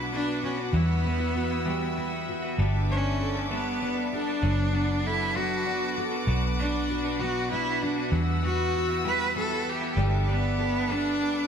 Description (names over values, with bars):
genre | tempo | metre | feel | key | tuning
six-eight pop ballad | 65 BPM (dotted quarters) | 6/8 | straight | unclear | A4 = 439 Hz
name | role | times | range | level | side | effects
fingerpicked steel-string acoustic guitar | accompaniment | 0.0-11.5 s | B2 to A4 | -32 LUFS | equal | double-tracked left and right
warm studio string section | sustained chords | 0.0-11.5 s | B4 to E6 | -35 LUFS | left 2 dB | none
twelve-string electric guitar | arpeggios | 0.0-11.5 s | B2 to A4 | -35 LUFS | right 1 dB | ping-pong delay
vintage muted fingered electric bass | bass | 0.0-11.5 s | F#1 to E2 | -28 LUFS | equal | none
rich cello | melody | 0.1-11.5 s | B3 to B4 | -29 LUFS | equal | ping-pong delay
room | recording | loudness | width
moderate church reverb, RT60 3.1 s | dreamy mix soaked in reverb | -24 LUFS | side -7 dB against mid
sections
0.0-11.5 A section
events
none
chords
0.0 Bm; 0.7 Emadd9; 2.6 Gadd9; 4.4 D6/F#; 6.3 Bm; 8.1 Emadd9; 10.0 Gadd9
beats
| 0.73 1.66 | 2.58 3.50 | 4.43 5.35 | 6.27 7.20 | 8.12 9.04 | 9.96 10.89